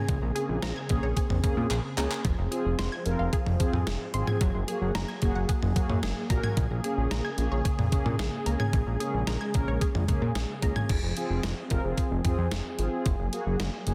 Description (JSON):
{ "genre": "synth-pop", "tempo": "111 BPM", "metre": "4/4", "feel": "straight", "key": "Bb minor", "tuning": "A4 = 438 Hz", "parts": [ { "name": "mellow synth brass", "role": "accompaniment", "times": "0.0-13.9 s", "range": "Bb3 to Bb4", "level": "-36 LUFS", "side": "equal", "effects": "chorus" }, { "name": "warm analog pad", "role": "sustained chords", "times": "0.0-13.9 s", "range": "Db3 to Ab4", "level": "-38 LUFS", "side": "equal", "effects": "chorus" }, { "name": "unison pluck", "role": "arpeggios", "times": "0.0-10.9 s", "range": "Db3 to Ab6", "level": "-39 LUFS", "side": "equal", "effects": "delay" }, { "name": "fat analog bass", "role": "bass", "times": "0.1-13.9 s", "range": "F1 to Bb2", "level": "-32 LUFS", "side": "equal", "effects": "none" }, { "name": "detuned 8-bit digital drum machine", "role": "drums", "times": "0.1-13.9 s", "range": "crash cymbal, handclaps, hi-hat, kick drum, snare drum, toms", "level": "-31 LUFS", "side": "equal", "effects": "none" } ], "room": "light reverb", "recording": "dense, heavily limited modern master", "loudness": "-28 LUFS", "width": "mono", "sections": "0.0-10.9 A section; 10.9-13.9 B section", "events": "drum fill 1.7-2.2", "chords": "0.0 Bbm7; 2.2 Fm; 4.4 Gbadd9; 6.6 Bbm7; 10.9 Fm; 13.1 Gbadd9" }